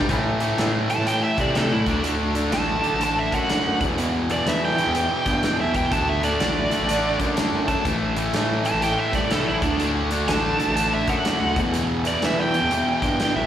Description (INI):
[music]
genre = blues rock power trio and southern rock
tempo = 124 BPM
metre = 4/4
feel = swing 64% on 8ths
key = unclear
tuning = A4 = 440 Hz
[part]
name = fuzz guitar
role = riff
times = 0.0-13.5 s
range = E2 to D4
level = -23 LUFS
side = equal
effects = distortion, slapback echo
[part]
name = growling FM bass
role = bass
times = 0.0-13.5 s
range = A1 to E3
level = -26 LUFS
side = equal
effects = none
[part]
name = big rock drum kit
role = drums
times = 0.0-13.3 s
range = hi-hat, kick drum, snare drum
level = -28 LUFS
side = equal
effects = none
[part]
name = bluesy overdriven lead guitar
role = melody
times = 0.9-13.5 s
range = D4 to A5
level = -24 LUFS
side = right 2 dB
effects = distortion, slapback echo
[sound]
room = light reverb, small room ambience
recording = live gig heard through the venue's PA, recital hall reverb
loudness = -19 LUFS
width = side -10 dB against mid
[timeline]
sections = 0.1-13.5 A section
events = none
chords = 0.1 Am; 1.8 D; 3.7 Em; 5.9 D; 7.9 Am; 9.6 D; 11.5 Em